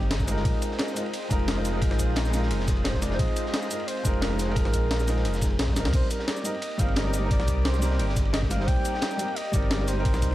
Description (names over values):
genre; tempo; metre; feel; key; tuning
liquid drum and bass; 175 BPM; 4/4; straight; unclear; A4 = 439 Hz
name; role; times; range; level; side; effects
breathy flugelhorn; melody; 0.0-0.1, 2.9-10.3 s; G4 to G5; -35 LUFS; equal; digital delay
lush unison pad; sustained chords; 0.0-10.3 s; G3 to D6; -36 LUFS; equal; chorus, phaser, vintage 12-bit sampler grit, sidechain pumping
sub bass with octave; bass; 0.0-10.3 s; F1 to Eb2; -27 LUFS; equal; none
crunchy breakbeat drum kit; drums; 0.0-10.3 s; ride cymbal, snare drum; -38 LUFS; equal; high-pass filter on cymbals, studio reverb, high-pass filter on snare, high-pass filter on room
breakbeat sampler-style drum kit; drums; 0.1-10.3 s; crash cymbal, hi-hat, ride cymbal, shaker, snare drum; -32 LUFS; equal; studio reverb
felt-muted upright piano; accompaniment; 0.2-10.3 s; G3 to C5; -31 LUFS; equal; ping-pong delay
electronic kick drum; drums; 0.2-10.3 s; none; -26 LUFS; equal; studio reverb
room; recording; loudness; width
small room ambience; dark, warm production; -23 LUFS; side -15 dB against mid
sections
0.0-10.3 A section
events
drum fill 5.8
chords
0.5 Bb7sus4; 5.9 Cm7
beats
0.11 | 0.45 0.79 1.14 1.48 | 1.82 2.17 2.51 2.85 | 3.19 3.54 3.88 4.22 | 4.57 4.91 5.25 5.59 | 5.94 6.28 6.62 6.96 | 7.31 7.65 7.99 8.34 | 8.68 9.02 9.37 9.71 | 10.05